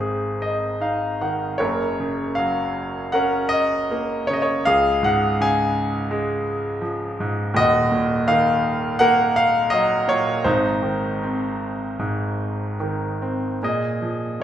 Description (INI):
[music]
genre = classical, lyrical solo piano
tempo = 72-85 BPM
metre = 4/4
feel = rubato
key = unclear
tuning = A4 = 440 Hz
[part]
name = bright concert grand piano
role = solo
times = 0.0-14.4 s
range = Eb1 to Ab5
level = -19 LUFS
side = equal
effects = none
[sound]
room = wet recital hall reverb, RT60 1.7 s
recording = recorded in a church or concert hall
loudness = -19 LUFS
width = side -10 dB against mid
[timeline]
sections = 0.0-13.6 A section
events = grand piano fill 0.0-1.6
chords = 0.0 Ab; 1.6 Gb; 4.7 Db; 7.6 Ebm; 10.5 Ab; 13.6 Bb7(no3)